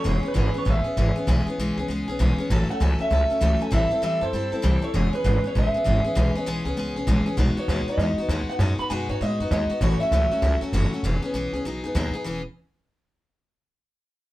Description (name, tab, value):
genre	rockabilly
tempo	197 BPM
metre	4/4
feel	swing 63% on 8ths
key	E major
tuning	A4 = 442 Hz
part	electric guitar through a small old amp	melody	0.0-10.6 s	B4 to B5	-26 LUFS	right 1 dB	none
part	picked steel-string acoustic guitar	accompaniment	0.0-12.4 s	A2 to A4	-26 LUFS	left 1 dB	none
part	upright bass	bass	0.0-12.4 s	E1 to A2	-23 LUFS	equal	none
room	light reverb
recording	band playing live in one room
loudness	-21 LUFS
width	side -16 dB against mid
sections	0.0-12.3 A section; 12.3-13.5 B section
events	none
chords	0.1 E6; 2.5 A6; 3.7 Am7; 4.9 E6; 7.4 B6; 9.8 A6; 11.0 E6; 11.6 B6; 12.3 E6